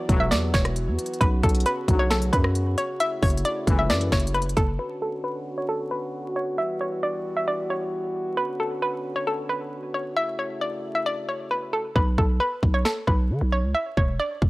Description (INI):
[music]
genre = hip hop, trap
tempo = 134 BPM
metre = 4/4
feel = half-time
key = B minor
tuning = A4 = 440 Hz
[part]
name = hollow square pluck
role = melody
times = 0.0-14.5 s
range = A4 to E5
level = -26 LUFS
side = equal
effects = chorus, low-pass filter
[part]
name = mellow French horn section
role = sustained chords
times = 0.0-11.9 s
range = C#3 to F#4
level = -31 LUFS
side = equal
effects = low-pass filter
[part]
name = mellow brass ensemble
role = stabs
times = 0.1-4.1 s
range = B1 to F#3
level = -30 LUFS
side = left 2 dB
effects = analog delay
[part]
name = growling 808-style bass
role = bass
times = 0.1-4.8, 12.0-14.5 s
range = E1 to D3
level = -24 LUFS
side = equal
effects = none
[part]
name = trap drum kit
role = drums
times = 0.1-4.7, 12.0-14.5 s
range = finger snaps, hi-hat, kick drum, rim click, snare drum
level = -23 LUFS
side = equal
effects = none
[sound]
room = digital ambience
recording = dry, gritty hardware recording, transformer saturation, vinyl crackle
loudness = -22 LUFS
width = side -20 dB against mid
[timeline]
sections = 0.0-4.8 A section; 4.8-12.0 B section; 12.0-14.5 C section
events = filter sweep 4.8-12.0; hi-hats muted 12.0-14.5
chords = 0.0 Emadd9; 1.2 Bmadd9; 3.0 F#m7; 4.8 Bmadd9; 6.6 Emadd9; 8.4 Bmadd9; 10.2 F#m7; 12.0 Bsus2; 13.7 C#m/E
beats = 0.32 0.76 | 1.21 1.66 2.11 2.55 | 3.00 3.45 3.90 4.34 | 4.79 5.24 5.69 6.14 | 6.58 7.03 7.48 7.93 | 8.38 8.82 9.27 9.72 | 10.17 10.61 11.06 11.51 | 11.96 12.40 12.85 13.30 | 13.75 14.20